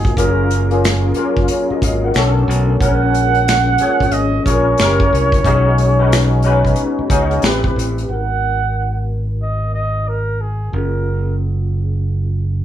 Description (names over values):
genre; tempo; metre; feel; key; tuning
R&B, neo-soul; 91 BPM; 4/4; swing 63% on 16ths; G# dorian; A4 = 445 Hz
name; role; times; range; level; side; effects
mellow flugelhorn; melody; 0.0-11.4 s; G#4 to F#5; -19 LUFS; right 4 dB; slapback echo
barky tine electric piano; accompaniment; 0.0-12.6 s; E#3 to F#5; -19 LUFS; left 3 dB; overdrive, ensemble chorus
tonewheel organ; sustained chords; 0.0-8.1 s; D3 to A#4; -28 LUFS; right 3 dB; none
modern bright fingered electric bass; bass; 0.0-12.6 s; F#1 to C#2; -17 LUFS; equal; none
unplugged drum kit; drums; 0.0-8.1 s; finger snaps, hi-hat, kick drum, snare drum; -19 LUFS; equal; none
room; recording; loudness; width
light reverb; small room ambience; -13 LUFS; side -11 dB against mid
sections
0.0-8.1 A section; 8.1-12.6 B section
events
none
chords
0.2 F#maj9; 2.1 Bm7; 2.8 A#m7; 4.8 F#7b9; 5.4 B69; 7.4 Am7; 8.1 G#m7; 10.7 F#maj9